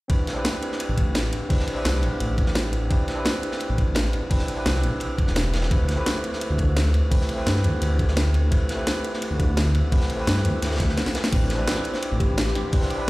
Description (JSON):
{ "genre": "liquid drum and bass", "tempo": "171 BPM", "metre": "4/4", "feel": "straight", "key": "A minor", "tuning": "A4 = 441 Hz", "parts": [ { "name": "overdriven tine electric piano", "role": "accompaniment", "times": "0.1-13.1 s", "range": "A3 to B4", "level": "-28 LUFS", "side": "equal", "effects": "dub echo" }, { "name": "crunchy breakbeat drum kit", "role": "drums", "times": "0.1-13.1 s", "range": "hi-hat, ride cymbal, snare drum", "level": "-32 LUFS", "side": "equal", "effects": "high-pass filter on cymbals, high-pass filter on hats, high-pass filter on snare, high-pass filter on room" }, { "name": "drum and bass drum kit", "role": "drums", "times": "0.1-13.1 s", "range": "crash cymbal, hi-hat, snare drum", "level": "-28 LUFS", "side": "equal", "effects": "none" }, { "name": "electronic kick drum", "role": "drums", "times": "0.1-12.8 s", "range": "none", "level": "-22 LUFS", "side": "equal", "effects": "none" }, { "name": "dark detuned saw bass", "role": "bass", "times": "0.9-12.8 s", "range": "E1 to G2", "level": "-23 LUFS", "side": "equal", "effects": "none" }, { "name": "glassy FM pad", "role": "sustained chords", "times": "11.8-13.1 s", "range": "C4 to D6", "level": "-36 LUFS", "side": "left 1 dB", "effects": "ensemble chorus, built-in reverb, sidechain pumping" }, { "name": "kalimba", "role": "melody", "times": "11.9-12.4 s", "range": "G4 to C5", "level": "-31 LUFS", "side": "left 2 dB", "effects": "digital delay" } ], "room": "light reverb, small room ambience", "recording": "played on a big sound system in a bare room, large studio reverb", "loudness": "-20 LUFS", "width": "side -20 dB against mid", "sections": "0.1-13.1 A section", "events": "kick drops out 11.0-11.3; drum fill 11.0-11.3", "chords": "0.1 Am11; 5.7 D13sus4; 11.3 Am11" }